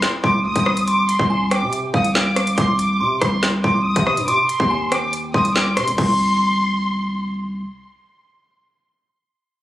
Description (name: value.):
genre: hip hop, drill.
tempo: 141 BPM.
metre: 4/4.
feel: half-time.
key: C harmonic minor.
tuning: A4 = 441 Hz.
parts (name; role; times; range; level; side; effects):
delicate synth tine bell; second line; 0.0-7.2 s; F5 to D6; -23 LUFS; right 1 dB; chorus, digital delay.
drill drum kit; drums; 0.0-6.1 s; crash cymbal, hi-hat, kick drum, rim click, snare drum; -21 LUFS; equal; none.
dark studio violin section; melody; 0.2-7.2 s; C6 to Eb6; -21 LUFS; equal; digital delay.
growling 808-style bass; bass; 0.2-7.6 s; C2 to C3; -22 LUFS; equal; none.
room: light reverb.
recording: recorded on a phone in the room, club reverb, compression.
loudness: -16 LUFS.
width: side -14 dB against mid.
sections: 0.0-6.0 A section; 6.0-9.4 B section.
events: none.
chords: none.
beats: 0.03 0.45 | 0.88 1.30 1.73 2.15 | 2.58 3.00 3.43 3.85 | 4.28 4.71 5.13 5.56 | 5.98 6.41 6.83 7.26.